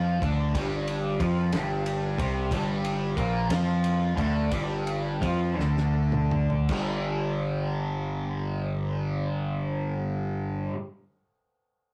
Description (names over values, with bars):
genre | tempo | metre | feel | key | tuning
psychedelic rock | 52-61 BPM (dotted quarters) | 6/8 | straight | unclear | A4 = 440 Hz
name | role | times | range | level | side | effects
fuzz guitar | riff | 0.0-10.8 s | G2 to F4 | -32 LUFS | equal | distortion, phaser
growling fingered electric bass | bass | 0.0-10.7 s | G1 to F2 | -30 LUFS | equal | overdrive
cloth-damped thuddy drum kit | drums | 0.2-6.9 s | crash cymbal, kick drum, ride cymbal, snare drum, toms | -36 LUFS | equal | none
room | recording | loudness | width
moderate studio reverb, RT60 0.6 s | rough rehearsal-room recording, warm saturation | -28 LUFS | mono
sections
0.0-6.7 A section; 6.7-11.3 B section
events
slowing down 2.5-6.7; drum fill 5.6-6.7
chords
0.0 G5